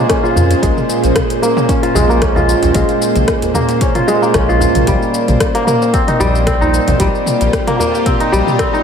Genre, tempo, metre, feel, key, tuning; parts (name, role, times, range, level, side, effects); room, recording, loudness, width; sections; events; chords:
organic downtempo; 113 BPM; 4/4; swing 54% on 16ths; Bb dorian; A4 = 441 Hz
bowed-like drone; sustained chords; 0.0-8.8 s; Bb2 to C5; -18 LUFS; equal; built-in reverb, sidechain pumping
kora; arpeggios; 0.0-8.8 s; G3 to F4; -14 LUFS; equal; low-pass filter, tape echo
deep house drum kit; drums; 0.1-8.8 s; hi-hat, rim click, shaker, toms; -20 LUFS; equal; overdrive, studio reverb
electronic kick drum; drums; 0.1-8.7 s; -18 LUFS; left 1 dB; overdrive, studio reverb
warm sub bass; bass; 0.4-8.4 s; Bb1 to F2; -15 LUFS; left 1 dB
darbuka; percussion; 0.4-8.6 s; -26 LUFS; right 1 dB
moderate lush hall reverb, RT60 1.5 s; dreamy mix soaked in reverb; -11 LUFS; side -7 dB against mid
0.0-8.8 A section
filter sweep on kora 0.0-8.8
0.0 Bbm7; 4.9 Eb6/Bb